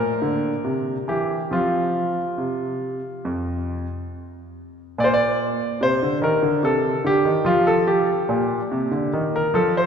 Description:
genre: classical, baroque-style suite movement for grand piano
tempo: 71 BPM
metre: 4/4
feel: rubato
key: Bb major from 5.0 s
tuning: A4 = 440 Hz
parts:
  - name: clear concert grand piano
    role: solo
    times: 0.0-9.9 s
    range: F2 to D5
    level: -20 LUFS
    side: equal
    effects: none
room: wet church reverb, RT60 3.2 s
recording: heard from further back in the room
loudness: -19 LUFS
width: side -7 dB against mid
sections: 0.0-5.0 A section; 5.0-9.9 A section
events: none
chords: 0.0 Bb; 0.6 C7; 1.5 F5; 5.0 Bb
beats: 0.64 | 1.50 2.37 3.24 4.10 | 4.97 5.81 6.63 7.45 | 8.28 9.12

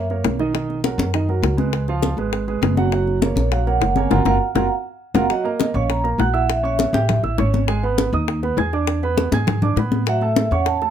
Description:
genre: Afro-Cuban jazz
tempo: 202 BPM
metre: 4/4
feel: straight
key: F# major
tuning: A4 = 441 Hz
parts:
  - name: vibraphone with medium mallets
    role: melody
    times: 0.0, 3.4-7.2, 10.1-10.9 s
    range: C#5 to A#5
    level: -22 LUFS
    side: right 3 dB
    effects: plate reverb
  - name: warm grand piano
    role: accompaniment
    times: 0.0-10.9 s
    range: D#3 to G#6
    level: -24 LUFS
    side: right 6 dB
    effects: none
  - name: upright bass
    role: bass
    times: 0.0-10.9 s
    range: F#1 to A2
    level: -21 LUFS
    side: equal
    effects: none
  - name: congas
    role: percussion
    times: 0.1-10.9 s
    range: none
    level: -23 LUFS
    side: left 2 dB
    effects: none
  - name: bongos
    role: percussion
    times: 0.2-10.9 s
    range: none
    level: -25 LUFS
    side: left 10 dB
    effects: none
room: light reverb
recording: none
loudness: -17 LUFS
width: side -9 dB against mid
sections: 0.0-5.3 A section; 5.3-10.9 B section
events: band accent 4.1-5.3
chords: 0.0 F#; 0.5 Bmaj9; 1.7 C#7; 2.9 F#maj7; 5.3 D#m7; 6.5 A#dim; 7.1 A7; 7.7 G#m; 8.9 E7; 10.1 A6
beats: 0.24 | 0.54 0.84 1.14 1.43 | 1.73 2.03 2.33 2.62 | 2.92 3.22 3.52 3.81 | 4.11 4.41 4.71 5.00 | 5.30 5.60 5.90 6.20 | 6.50 6.79 7.09 7.39 | 7.69 7.99 8.28 8.58 | 8.88 9.18 9.48 9.78 | 10.07 10.37 10.67

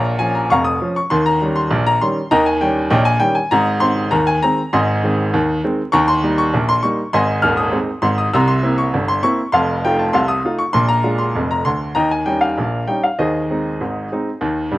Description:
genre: ragtime piano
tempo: 99 BPM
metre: 2/4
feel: straight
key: Ab major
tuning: A4 = 440 Hz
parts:
  - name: clear baby grand piano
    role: solo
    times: 0.0-14.8 s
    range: Eb1 to F6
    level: -15 LUFS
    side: equal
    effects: none
room: little or no reverb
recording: recorded outdoors, with no room sound, vinyl crackle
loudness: -15 LUFS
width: side -17 dB against mid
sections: 0.0-14.8 A section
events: none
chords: 0.0 Bbm; 1.1 Eb7; 3.5 Ab; 5.9 Eb; 7.1 Ab; 8.3 C7; 9.5 F7; 10.8 Bb7; 12.0 Eb7; 13.2 Ab/Eb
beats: 0.50 | 1.10 1.71 | 2.31 2.91 | 3.52 4.12 | 4.72 5.33 | 5.93 6.53 | 7.13 7.73 | 8.34 8.94 | 9.54 10.15 | 10.75 11.36 | 11.97 12.58 | 13.19 13.80 | 14.42

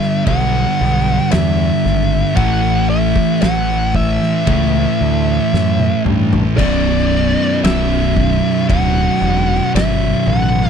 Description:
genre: stoner and doom metal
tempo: 57 BPM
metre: 4/4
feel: straight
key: B minor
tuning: A4 = 440 Hz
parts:
  - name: fuzz lead guitar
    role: melody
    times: 0.0-10.7 s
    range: D5 to F#5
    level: -20 LUFS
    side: equal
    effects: wah, distortion
  - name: distorted electric guitar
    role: riff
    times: 0.0-10.7 s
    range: B1 to A3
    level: -22 LUFS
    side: equal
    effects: distortion
  - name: thick fuzz guitar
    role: riff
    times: 0.0-10.7 s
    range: B1 to A3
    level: -20 LUFS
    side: left 11 dB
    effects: distortion
  - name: thick fuzz guitar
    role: riff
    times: 0.0-10.7 s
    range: B1 to A3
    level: -20 LUFS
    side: right 13 dB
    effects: distortion
  - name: oversized low-tuned drum kit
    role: drums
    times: 0.0-10.0 s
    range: crash cymbal, kick drum, ride cymbal, snare drum, toms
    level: -22 LUFS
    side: equal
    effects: none
  - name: growling fingered electric bass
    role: bass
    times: 0.3-10.6 s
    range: B0 to G2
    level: -18 LUFS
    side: equal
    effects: overdrive
room: little or no reverb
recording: dry, close 1970s-style studio recording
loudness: -12 LUFS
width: side -7 dB against mid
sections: 0.0-10.7 A section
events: drum fill 5.5-6.6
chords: 0.0 G; 2.4 A5; 6.6 Bm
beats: 0.27 1.32 | 2.37 3.42 4.48 5.53 | 6.58 7.64 8.70 9.75

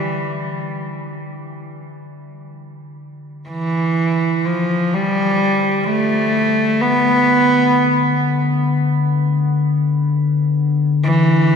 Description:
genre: dark ambient drone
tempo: free time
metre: none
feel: none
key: unclear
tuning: A4 = 440 Hz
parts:
  - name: rich cello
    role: melody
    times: 0.0-11.6 s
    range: E3 to B3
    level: -17 LUFS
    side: equal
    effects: ping-pong delay
  - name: deep rumbling drone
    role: drone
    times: 0.0-11.6 s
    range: D3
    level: -20 LUFS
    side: left 3 dB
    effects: built-in reverb
room: wet cathedral reverb, RT60 6.0 s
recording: none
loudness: -14 LUFS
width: side -6 dB against mid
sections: 0.0-11.6 A section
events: filter sweep on synth drone 0.0-11.6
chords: none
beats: free time

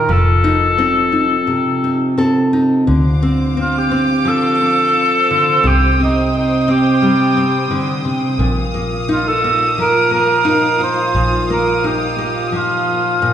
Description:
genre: acoustic folk-pop ballad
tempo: 87 BPM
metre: 4/4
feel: straight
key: unclear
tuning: A4 = 443 Hz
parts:
  - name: mellow cor anglais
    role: melody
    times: 0.0-13.3 s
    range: Eb4 to C5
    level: -15 LUFS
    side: equal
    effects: none
  - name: nylon-string guitar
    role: accompaniment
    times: 0.0-13.3 s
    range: Bb2 to A4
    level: -17 LUFS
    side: equal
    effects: none
  - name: vintage muted fingered electric bass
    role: bass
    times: 0.0-13.3 s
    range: F1 to D2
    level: -18 LUFS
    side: equal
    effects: none
  - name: warm chamber string section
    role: sustained chords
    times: 2.9-13.3 s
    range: F4 to Eb6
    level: -24 LUFS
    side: right 1 dB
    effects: none
room: wet recital hall reverb, RT60 1.9 s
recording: recorded in a church or concert hall, nothing above 11.0 kHz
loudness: -13 LUFS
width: side -10 dB against mid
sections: 0.0-2.9 A section; 2.9-13.3 B section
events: none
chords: 0.1 F7; 2.9 Dm7; 5.6 Cm; 8.4 Ebsus2/Bb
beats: | 0.09 0.78 1.47 2.17 | 2.87 3.57 4.26 4.95 | 5.64 6.33 7.02 7.70 | 8.39 9.08 9.77 10.46 | 11.15 11.84 12.54 13.24

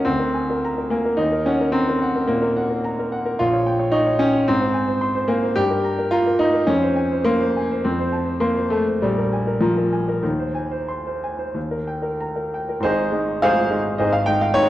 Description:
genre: classical, romantic character piece for solo piano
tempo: 90-113 BPM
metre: 4/4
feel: rubato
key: Ab major from 3.4 s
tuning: A4 = 439 Hz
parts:
  - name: clear grand piano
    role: solo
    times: 0.0-14.7 s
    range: Ab1 to Db6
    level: -18 LUFS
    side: equal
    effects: none
room: wet recital hall reverb, RT60 1.8 s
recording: worn, warbling old tape, cassette tape, warbly pitch drift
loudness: -18 LUFS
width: side -14 dB against mid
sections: 0.0-12.8 A section; 12.8-14.7 B section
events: none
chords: 0.1 Bb7/D; 1.2 Ebm; 3.4 Bbm6; 4.5 Ab; 5.6 Gm7; 6.7 Fm; 7.8 F; 9.0 Bb5; 10.2 Ab/Eb; 11.6 Eb; 12.8 Ab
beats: 0.06 0.64 | 1.19 1.75 2.29 2.85 | 3.39 3.93 4.47 5.01 | 5.57 6.13 6.69 7.26 | 7.85 8.43 9.02 9.61 | 10.24 10.90 11.56 12.20 | 12.83 13.41 13.98 14.55

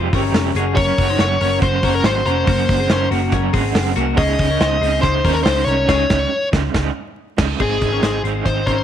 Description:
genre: jangly indie pop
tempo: 141 BPM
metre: 4/4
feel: straight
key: unclear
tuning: A4 = 441 Hz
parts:
  - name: raw garage guitar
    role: accompaniment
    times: 0.0-8.8 s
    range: Ab2 to G4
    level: -23 LUFS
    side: right 11 dB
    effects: overdrive, tremolo
  - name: twelve-string electric guitar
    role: arpeggios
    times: 0.0-8.8 s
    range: Bb3 to Db5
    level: -22 LUFS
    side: left 10 dB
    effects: slapback echo
  - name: vintage muted picked electric bass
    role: bass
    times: 0.0-8.8 s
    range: F1 to Eb2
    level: -21 LUFS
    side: equal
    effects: none
  - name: big rock drum kit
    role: drums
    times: 0.1-8.8 s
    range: crash cymbal, hi-hat, kick drum, snare drum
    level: -21 LUFS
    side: equal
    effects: none
  - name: dark smooth lead guitar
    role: melody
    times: 0.8-8.8 s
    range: Ab4 to Eb5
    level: -20 LUFS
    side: left 1 dB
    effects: overdrive, slapback echo
room: light reverb, small room reverb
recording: 1960s-style stereo with parts hard left and right, vinyl crackle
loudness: -15 LUFS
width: side -9 dB against mid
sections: 0.0-7.6 A section; 7.6-8.8 B section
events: band accent 5.9-7.6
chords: 0.0 Fmadd9; 0.6 Gb; 4.2 Dbsus2; 7.6 Ab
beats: 0.35 | 0.77 1.20 1.62 2.05 | 2.48 2.90 3.33 3.75 | 4.18 4.61 5.04 5.46 | 5.89 6.32 6.74 7.17 | 7.60 8.02 8.45

